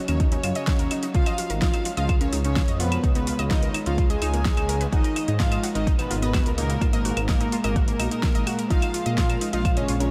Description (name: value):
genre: melodic techno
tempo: 127 BPM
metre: 4/4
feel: straight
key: unclear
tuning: A4 = 442 Hz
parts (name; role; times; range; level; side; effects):
- deep dark ambient pad; sustained chords; 0.0-10.1 s; Gb3 to Eb5; -35 LUFS; equal; chorus, built-in reverb, sidechain pumping
- analog pluck; arpeggios; 0.0-10.1 s; Bb3 to Eb6; -36 LUFS; equal; chorus, sidechain pumping, delay
- fat analog lead; melody; 0.1-10.1 s; Bb3 to Ab4; -31 LUFS; equal; cassette tape, sidechain pumping, tape echo
- warm studio violin section; second line; 0.1-10.1 s; Bb4 to Ab5; -37 LUFS; equal; sidechain pumping, delay
- swelling detuned saw bass; bass; 0.1-10.1 s; Ab1 to Bb2; -29 LUFS; equal; sidechain pumping
- deep house drum kit; drums; 0.1-10.1 s; claves, hi-hat, snare drum; -33 LUFS; equal; none
- electronic kick drum; drums; 0.2-9.7 s; none; -25 LUFS; equal; none
room: light reverb, digital ambience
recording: none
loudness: -23 LUFS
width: mono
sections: 0.0-10.1 A section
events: none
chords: 0.0 Ebmadd9; 1.1 Db; 4.9 Abmadd9; 8.7 Bbm7